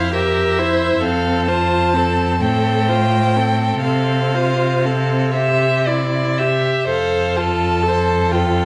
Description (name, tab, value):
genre	classical, slow romantic movement for string quartet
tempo	39-45 BPM (dotted quarters)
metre	6/8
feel	rubato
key	F major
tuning	A4 = 440 Hz
part	clear violin	melody	0.0-8.7 s	E5 to A5	-24 LUFS	equal	none
part	rich violin	second line	0.0-8.7 s	A4 to E5	-23 LUFS	equal	none
part	clear viola	accompaniment	0.0-8.7 s	C4 to A4	-24 LUFS	equal	none
part	rich cello	bass	0.0-8.7 s	F2 to C3	-22 LUFS	equal	none
room	moderate recital hall reverb, RT60 1.5 s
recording	vinyl crackle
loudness	-17 LUFS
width	mono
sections	0.0-8.7 A section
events	none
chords	0.0 C7/F; 1.0 F; 2.4 F/A; 3.8 F/C; 5.4 C; 6.9 F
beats	| 1.02 2.41 | 3.84 5.36 | 6.88 8.32